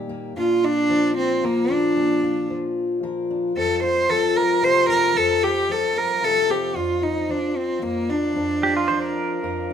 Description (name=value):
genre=acoustic folk duo or small band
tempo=113 BPM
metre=3/4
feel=straight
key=unclear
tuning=A4 = 442 Hz
part: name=fingerpicked steel-string acoustic guitar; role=accompaniment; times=0.0-9.7 s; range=F2 to Bb4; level=-24 LUFS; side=left 2 dB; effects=none
part: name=warm cello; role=melody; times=0.4-9.7 s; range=Bb3 to C5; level=-20 LUFS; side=right 1 dB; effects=none
part: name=pedal steel guitar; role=second line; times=8.6-9.7 s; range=F4 to C5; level=-23 LUFS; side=right 5 dB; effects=none
room=light reverb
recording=minimal, uncompressed stereo recording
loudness=-19 LUFS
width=side -8 dB against mid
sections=0.0-9.7 A section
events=none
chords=0.4 Bb; 3.6 F; 6.8 Bb/F